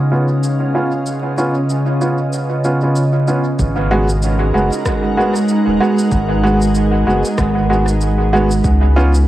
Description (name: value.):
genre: ambient dub.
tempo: 95 BPM.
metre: 4/4.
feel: swing 59% on 16ths.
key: G# dorian.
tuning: A4 = 439 Hz.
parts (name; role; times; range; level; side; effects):
soft additive organ-like pad; sustained chords; 0.0-9.3 s; C#3 to F#5; -17 LUFS; equal; ensemble chorus, built-in reverb, cassette tape.
drifting glass-harmonics texture; texture; 0.0-3.6 s; G#3 to G#4; -35 LUFS; left 1 dB; none.
bright upright piano; stabs; 0.1-9.1 s; G#3 to F#4; -18 LUFS; right 1 dB; low-pass filter, cassette tape, dub echo, plate reverb.
electronic cabasa and rim click; drums; 0.4-9.2 s; none; -29 LUFS; equal; dub echo.
warm sub bass; bass; 3.6-9.3 s; D#1 to C#2; -15 LUFS; equal; none.
electronic kick drum; drums; 3.6-8.8 s; none; -22 LUFS; equal; overdrive.
room: light reverb.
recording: home recording on cassette, vinyl crackle.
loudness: -13 LUFS.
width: side -14 dB against mid.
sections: 0.0-3.6 A section; 3.6-9.3 B section.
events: none.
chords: 0.0 C#7; 3.6 G#m7; 8.6 C#7.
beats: 0.43 | 1.06 1.70 2.33 2.96 | 3.59 4.22 4.85 5.49 | 6.12 6.75 7.38 8.01 | 8.64 9.28.